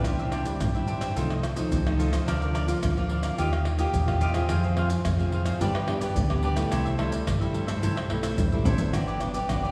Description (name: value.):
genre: samba and choro.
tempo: 108 BPM.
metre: 4/4.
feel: straight.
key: C major.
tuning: A4 = 441 Hz.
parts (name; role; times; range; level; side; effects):
cavaquinho; accompaniment; 0.0-9.7 s; D4 to F5; -35 LUFS; equal; none.
nylon-string guitar; accompaniment; 0.0-9.7 s; G2 to Ab4; -33 LUFS; equal; none.
maracas, surdo, pandeiro and tamborim; percussion; 0.0-9.7 s; none; -31 LUFS; equal; none.
sub bass with octave; bass; 0.1-9.7 s; G1 to G2; -31 LUFS; equal; none.
room: wet concert hall reverb, RT60 1.9 s.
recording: recorded in a church or concert hall, small room ambience.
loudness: -26 LUFS.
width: mono.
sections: 0.0-8.9 A section.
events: drum fill 8.1-8.9.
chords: 0.1 Cadd9; 1.2 F7/C; 2.3 Bb/D; 3.4 Ebadd9; 4.5 Fm; 5.6 G; 6.7 C6; 8.9 Gmaj7.